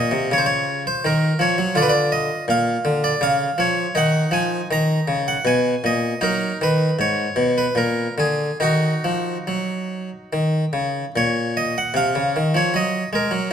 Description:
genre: classical, baroque-style suite movement for harpsichord.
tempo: 69-83 BPM.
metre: 3/4.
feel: rubato.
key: Eb minor.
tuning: A4 = 442 Hz.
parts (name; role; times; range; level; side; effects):
harpsichord; solo; 0.0-13.5 s; Ab2 to Bb5; -18 LUFS; equal; none.
room: moderate recital hall reverb, RT60 1.5 s.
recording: none.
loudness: -18 LUFS.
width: side -8 dB against mid.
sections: 0.0-11.2 A section; 11.2-13.5 A section.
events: none.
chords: 0.0 Bbm; 1.8 Bb/D; 3.2 Db; 4.0 Db69; 5.5 Abm/Cb; 6.2 Ebm/Gb; 7.0 Abmadd11; 7.8 Bb7; 8.6 Ebm; 11.2 Bbm; 12.7 Ebm/Gb.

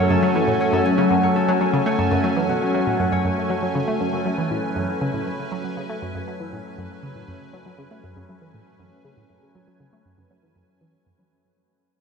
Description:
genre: ambient, sequencer-driven space music.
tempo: 119 BPM.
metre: 4/4.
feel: straight.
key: F# minor.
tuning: A4 = 440 Hz.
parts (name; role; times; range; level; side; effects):
evolving wavetable pad; sustained chords; 0.0-11.3 s; F#3 to G#5; -23 LUFS; equal; phaser, built-in reverb.
Celtic harp; arpeggios; 0.0-6.8 s; F#3 to C#5; -25 LUFS; left 1 dB; auto-pan, analog delay.
analog pluck; riff; 0.0-11.3 s; F#2 to A3; -25 LUFS; equal; chorus, analog delay.
bubbling stepped-filter texture; texture; 0.0-11.3 s; A3; -31 LUFS; right 2 dB; chorus, built-in reverb.
room: wet concert hall reverb, RT60 2.2 s.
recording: dark, warm production.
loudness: -19 LUFS.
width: side -6 dB against mid.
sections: 0.0-11.3 A section.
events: fade-out 0.0-11.3; filter sweep on synth arpeggio sound 0.0-11.3.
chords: 0.0 F#m.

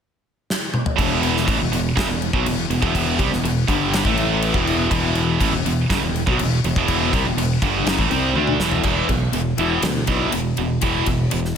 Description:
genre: hard rock.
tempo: 122 BPM.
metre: 4/4.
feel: straight.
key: E minor.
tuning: A4 = 440 Hz.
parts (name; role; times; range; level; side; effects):
gated 80s drum kit; drums; 0.5-11.5 s; crash cymbal, kick drum, ride cymbal, snare drum, toms; -23 LUFS; equal; none.
crunchy overdriven guitar; riff; 1.0-11.6 s; E2 to D4; -24 LUFS; left 9 dB; phaser.
tight distorted guitar; riff; 1.0-11.5 s; E2 to D4; -22 LUFS; right 10 dB; distortion.
modern bright fingered electric bass; bass; 1.0-11.5 s; E1 to D2; -25 LUFS; equal; none.
room: small room ambience.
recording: none.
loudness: -17 LUFS.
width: side -7 dB against mid.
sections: 1.0-8.9 A section; 8.9-11.6 B section.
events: drum fill 0.5-1.0, 8.4-8.9.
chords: 0.0 N.C.; 1.0 Em; 4.1 A5; 4.5 Em; 8.9 E5.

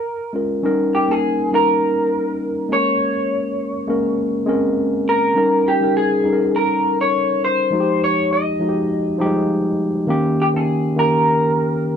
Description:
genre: soul.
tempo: 102 BPM.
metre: 4/4.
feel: swing 54% on 16ths.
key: unclear.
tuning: A4 = 440 Hz.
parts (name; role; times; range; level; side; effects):
electric guitar through a small old amp; melody; 0.0-12.0 s; G4 to Eb5; -19 LUFS; equal; lush chorus.
tine electric piano; accompaniment; 0.3-12.0 s; Eb3 to G5; -18 LUFS; left 1 dB; overdrive.
room: light reverb.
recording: dry, close 1970s-style studio recording.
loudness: -16 LUFS.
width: side -7 dB against mid.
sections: 0.6-12.0 A section.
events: none.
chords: 0.0 Bbm7; 0.6 Eb7; 2.7 Bbm9; 5.4 Eb7; 7.7 Fm9; 10.1 Eb7.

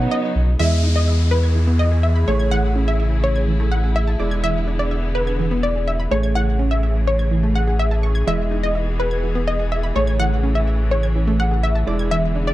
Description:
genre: pop.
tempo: 125 BPM.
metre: 4/4.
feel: straight.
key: E major.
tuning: A4 = 438 Hz.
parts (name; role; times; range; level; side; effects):
wide unison pluck; melody; 0.0-12.5 s; B4 to F#5; -24 LUFS; left 1 dB; slapback echo.
clear grand piano; accompaniment; 0.0-12.5 s; G#3 to D#5; -28 LUFS; right 5 dB; none.
clear studio string section; sustained chords; 0.0-12.5 s; B2 to G#4; -27 LUFS; left 3 dB; none.
sub bass with octave; bass; 0.0-12.5 s; E1 to E2; -19 LUFS; equal; none.
analog pluck; arpeggios; 0.6-12.5 s; E3 to G#6; -28 LUFS; right 3 dB; chorus, slapback echo.
downlifter; sound effects; 0.6-4.4 s; none; -31 LUFS; left 1 dB; none.
room: little or no reverb.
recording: dry, close 1970s-style studio recording.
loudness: -17 LUFS.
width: side -15 dB against mid.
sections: 0.6-12.5 A section.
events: none.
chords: 0.0 Badd9; 0.6 Emaj7; 2.3 Amaj7; 4.2 E7; 6.1 Amaj7; 8.3 Emaj7; 10.0 Amaj7; 11.9 E7.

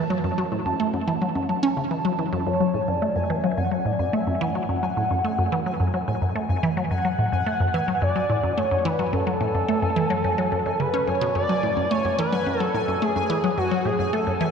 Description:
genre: ambient, sequencer-driven space music.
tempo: 108 BPM.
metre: 4/4.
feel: straight.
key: F# minor.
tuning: A4 = 439 Hz.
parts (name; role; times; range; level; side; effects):
resonant blip pluck; riff; 0.0-14.5 s; F#2 to C#4; -23 LUFS; equal; phaser, cassette tape, analog delay.
pulsing gated texture; texture; 0.0-14.5 s; G#5 to A5; -32 LUFS; left 1 dB; chorus, built-in reverb.
expressive portamento lead; melody; 2.5-14.5 s; F#4 to F#5; -25 LUFS; equal; analog chorus, analog delay.
room: wet cathedral reverb, RT60 7.2 s.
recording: in a vast, echoing space.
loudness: -21 LUFS.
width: side -6 dB against mid.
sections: 0.0-14.5 A section.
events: none.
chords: 0.0 F#m.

